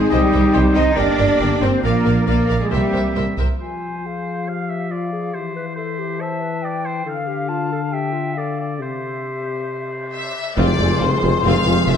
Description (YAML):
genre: cinematic, heroic adventure film score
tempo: 138 BPM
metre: 4/4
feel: straight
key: unclear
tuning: A4 = 440 Hz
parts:
  - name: clear oboe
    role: second line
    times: 0.0-12.0 s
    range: Bb4 to F5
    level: -29 LUFS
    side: right 1 dB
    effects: none
  - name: mellow silver concert flute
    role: second line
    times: 0.0-12.0 s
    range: G4 to C6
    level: -28 LUFS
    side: left 2 dB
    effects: none
  - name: warm clarinet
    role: second line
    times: 0.0-12.0 s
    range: F4 to Eb5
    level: -28 LUFS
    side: left 1 dB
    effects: none
  - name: warm symphonic violin section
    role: second line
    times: 0.0-3.2, 10.6-12.0 s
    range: C4 to Eb5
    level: -30 LUFS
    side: left 2 dB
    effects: none
  - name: clear trombone section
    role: sustained chords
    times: 0.0-3.4, 10.6-12.0 s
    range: D3 to C4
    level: -26 LUFS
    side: right 4 dB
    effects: none
  - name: dark French horn section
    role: sustained chords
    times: 0.0-12.0 s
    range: C3 to Ab4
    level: -25 LUFS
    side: left 5 dB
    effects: none
  - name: rich studio cello section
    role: bass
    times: 0.0-3.2, 10.6-12.0 s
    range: F2 to Eb4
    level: -21 LUFS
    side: right 2 dB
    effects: none
  - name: clear symphonic violin section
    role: melody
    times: 0.1-3.5, 10.1-12.0 s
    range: C5 to G5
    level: -26 LUFS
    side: left 5 dB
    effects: none
  - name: rich symphonic viola section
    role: accompaniment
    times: 0.1-3.5, 10.6-12.0 s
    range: C4 to Eb5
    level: -27 LUFS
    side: left 1 dB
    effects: none
  - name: rich symphonic double bass section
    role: bass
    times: 0.1-3.5, 10.6-12.0 s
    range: F1 to C2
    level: -20 LUFS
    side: right 2 dB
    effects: none
  - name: cymbal swell and tam-tam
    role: percussion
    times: 7.1-12.0 s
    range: none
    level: -26 LUFS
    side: left 2 dB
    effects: none
  - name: clear tuba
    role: bass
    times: 10.6-12.0 s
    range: F1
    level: -22 LUFS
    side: right 2 dB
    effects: none
room: moderate scoring stage reverb, RT60 2.1 s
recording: dark, warm production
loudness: -17 LUFS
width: side -8 dB against mid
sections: 0.0-3.6 A section; 3.6-10.6 B section; 10.6-12.0 C section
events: band accent 10.6-11.0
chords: 0.1 Cm; 1.0 Gm; 1.8 Bb; 2.7 C7; 3.6 Fm; 5.4 C/E; 7.1 Dm; 8.8 C; 10.6 Fm